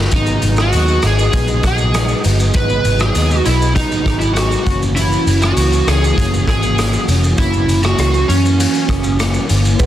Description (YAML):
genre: indie pop, bedroom pop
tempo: 99 BPM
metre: 4/4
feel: straight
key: unclear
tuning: A4 = 440 Hz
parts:
  - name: electric guitar through a small old amp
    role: accompaniment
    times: 0.0-9.9 s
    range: F#2 to D#4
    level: -23 LUFS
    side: left 6 dB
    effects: ensemble chorus, warbly pitch drift
  - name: vintage muted picked electric bass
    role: bass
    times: 0.0-9.9 s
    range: E#1 to F#2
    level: -16 LUFS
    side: equal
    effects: none
  - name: mellow tonewheel organ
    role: accompaniment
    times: 0.1-9.5 s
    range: E3 to D#5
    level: -24 LUFS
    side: right 6 dB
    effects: chorus vibrato, stopped rotary speaker
  - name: raw garage drum kit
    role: drums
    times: 0.1-9.9 s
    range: hi-hat, kick drum, ride cymbal, rim click, shaker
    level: -18 LUFS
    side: equal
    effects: soft clipping on snare
  - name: overdriven slide guitar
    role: melody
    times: 0.2-9.2 s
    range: C#4 to B4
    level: -18 LUFS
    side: right 2 dB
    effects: analog chorus
  - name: vibraphone with soft mallets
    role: second line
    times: 9.8-9.9 s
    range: G#4 to B4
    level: -20 LUFS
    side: right 7 dB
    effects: wide subtle chorus
  - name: warm analog pad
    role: sustained chords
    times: 9.8-9.9 s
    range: G#4 to D#6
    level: -36 LUFS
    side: right 7 dB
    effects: none
room: small room ambience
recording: dense, heavily limited modern master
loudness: -12 LUFS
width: side -12 dB against mid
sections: 0.0-9.8 A section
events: none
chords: 0.1 G#m7; 4.7 F#7